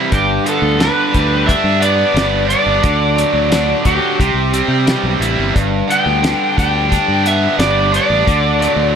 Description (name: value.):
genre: classic rock.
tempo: 88 BPM.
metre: 4/4.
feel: straight.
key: G major.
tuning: A4 = 440 Hz.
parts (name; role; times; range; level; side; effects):
cranked stack guitar; riff; 0.0-9.0 s; G2 to G4; -21 LUFS; left 15 dB; overdrive.
overdriven electric guitar; riff; 0.0-9.0 s; G2 to E4; -18 LUFS; right 10 dB; none.
overdriven slide guitar; melody; 0.1-9.0 s; G4 to G5; -16 LUFS; equal; none.
fingered electric bass; bass; 0.1-9.0 s; G1 to C3; -19 LUFS; equal; none.
cloth-damped thuddy drum kit; drums; 0.1-8.8 s; hi-hat, kick drum, snare drum; -17 LUFS; left 1 dB; none.
room: small room ambience.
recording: none.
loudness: -12 LUFS.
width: side -7 dB against mid.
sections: 0.0-9.0 A section.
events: none.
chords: 0.1 G; 2.8 D; 4.2 C; 5.5 G; 8.3 D.